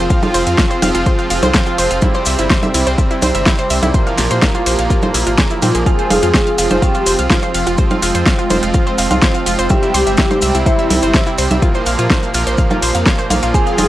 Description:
melodic techno; 125 BPM; 4/4; straight; F harmonic minor; A4 = 440 Hz
wide unison pluck; arpeggios; 0.0-13.9 s; C4 to F6; -20 LUFS; equal; sidechain pumping, tape echo
brassy analog pad; stabs; 0.0-13.9 s; Bb2 to F4; -20 LUFS; right 2 dB; chorus, sidechain pumping, tape echo
round analog bass; bass; 0.0-13.9 s; F1 to Bb2; -20 LUFS; equal; tube saturation, sidechain pumping
granular cloud pad; texture; 0.0-13.9 s; Ab3 to Bb5; -25 LUFS; equal; built-in reverb, sidechain pumping
deep house drum kit; drums; 0.1-13.9 s; congas, hi-hat, ride cymbal, snare drum; -18 LUFS; equal
electronic kick drum; drums; 0.1-13.6 s; -15 LUFS; equal
maracas; percussion; 0.1-13.9 s; -26 LUFS; left 3 dB
wide unison lead; melody; 5.9-13.9 s; E4 to Ab4; -19 LUFS; equal; sidechain pumping, tape echo
dark detuned synth bell; second line; 5.9-13.9 s; E5 to Ab5; -25 LUFS; right 1 dB; chorus, phaser, sidechain pumping, tape echo
light reverb, digital ambience; dry, gritty hardware recording, cassette tape; -12 LUFS; side -14 dB against mid
0.0-13.9 A section
0.0 Fm; 2.0 C; 3.9 Bbm; 5.9 Fmadd9; 9.7 C; 11.6 Bbm

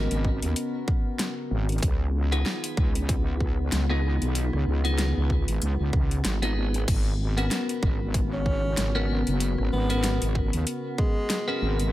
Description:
glitch hop; 95 BPM; 4/4; swing 57% on 16ths; G# dorian; A4 = 440 Hz
warbly tape-like pad; sustained chords; 0.0-11.9 s; C#3 to A#4; -35 LUFS; left 2 dB; chorus, built-in reverb, sidechain pumping
clean electric guitar; stabs; 0.0-11.9 s; B3 to A#4; -32 LUFS; equal; wide subtle chorus, sidechain pumping, digital delay
wobble bass; bass; 0.0-11.9 s; F#1 to D#2; -25 LUFS; equal; chorus, overdrive
dubstep drum kit; drums; 0.1-11.9 s; crash cymbal, hi-hat, rim click, snare drum; -31 LUFS; equal
electronic kick drum; drums; 0.2-11.1 s; -26 LUFS; equal
breathy tenor saxophone; melody; 8.3-11.9 s; G#3 to C#4; -33 LUFS; equal; digital delay
digital ambience; -23 LUFS; side -15 dB against mid
0.0-11.9 A section
kick drops out 6.2-6.9
0.0 G#m11; 1.8 C#9; 6.9 G#m11

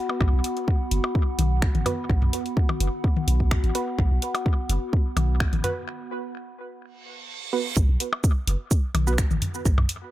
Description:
minimal techno; 127 BPM; 4/4; straight; A4 = 440 Hz
warbly tape-like pad; texture; 0.0-5.9 s; B3 to B5; -31 LUFS; left 1 dB; chorus, built-in reverb, sidechain pumping
electronic percussion blips and toms; percussion; 0.1-9.9 s; -30 LUFS; left 3 dB; dub echo
punchy sub bass; bass; 0.2-9.9 s; F#1 to B1; -23 LUFS; equal; sidechain pumping
electronic kick drum; drums; 0.2-9.8 s; -22 LUFS; equal
house drum kit; drums; 0.4-10.0 s; finger snaps, hi-hat, shaker; -31 LUFS; equal; tape echo
filtered dub chord stab; stabs; 1.9-9.1 s; B3 to B4; -31 LUFS; right 4 dB; chorus, tape echo
reverse cymbal; sound effects; 7.0-7.8 s; -33 LUFS; right 7 dB
digital ambience; echo-heavy mix; -21 LUFS; side -14 dB against mid
0.0-7.8 A section; 7.8-10.1 B section
break 5.9-7.8; reverse cymbal 7.0-7.8; drop 7.8-10.1
0.0 B5

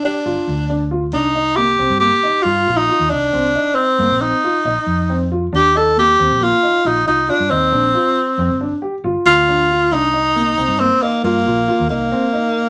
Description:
progressive instrumental, band music in an uneven meter; 136 BPM; 5/4; straight; Bb major; A4 = 440 Hz
warm tenor saxophone; melody; 0.0-12.7 s; Bb3 to A4; -17 LUFS; equal
dark concert grand piano; arpeggios; 0.0-12.6 s; Bb3 to G4; -24 LUFS; equal
hollow-body short-scale fingered electric bass; bass; 0.3-12.1 s; G1 to G2; -25 LUFS; equal
wet studio reverb, RT60 0.5 s; -16 LUFS; mono
0.0-12.7 A section
0.0 Bb (rootless); 1.1 Cm7; 7.7 Bbadd9 (rootless); 9.9 Bb5

